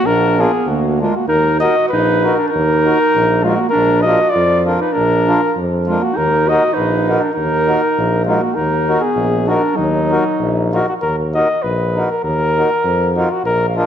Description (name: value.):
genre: alpine folk, alpine dance band.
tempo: 99 BPM.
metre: 2/4.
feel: swing 55% on 8ths, rubato.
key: Eb harmonic minor.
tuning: A4 = 440 Hz.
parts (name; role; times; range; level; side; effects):
mellow flugelhorn; melody; 0.0-13.9 s; Eb4 to F5; -16 LUFS; left 2 dB; none.
mellow clarinet; second line; 0.0-10.7 s; Gb3 to Gb4; -20 LUFS; right 7 dB; none.
clear tuba; bass; 0.0-13.8 s; Bb1 to F2; -19 LUFS; equal; none.
mellow accordion; accompaniment; 0.4-13.9 s; D4 to A#4; -21 LUFS; equal; none.
room: moderate concert hall reverb, RT60 2.2 s.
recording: none.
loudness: -13 LUFS.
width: side -9 dB against mid.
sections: 0.0-1.3 A section; 1.3-11.0 B section; 11.0-13.9 B section.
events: none.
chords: 0.0 A#; 1.3 Ebm; 3.7 Bb; 6.2 Ebm.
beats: | 0.04 0.67 | 1.30 1.92 | 2.54 3.14 | 3.74 4.35 | 4.96 5.56 | 6.18 6.78 | 7.38 7.97 | 8.57 9.17 | 9.78 10.40 | 11.02 11.63 | 12.24 12.84 | 13.44.